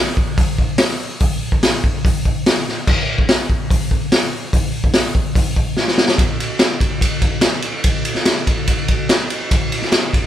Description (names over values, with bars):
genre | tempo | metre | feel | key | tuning
rock | 145 BPM | 4/4 | straight | none | none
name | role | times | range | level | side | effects
raw garage drum kit | drums | 0.2-10.2 s | crash cymbal, hi-hat, kick drum, ride cymbal, snare drum | -14 LUFS | equal | none
room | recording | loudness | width
light reverb | band playing live in one room | -15 LUFS | side -11 dB against mid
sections
0.0-6.2 A section; 6.2-10.3 B section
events
drum fill 5.8-6.2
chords
none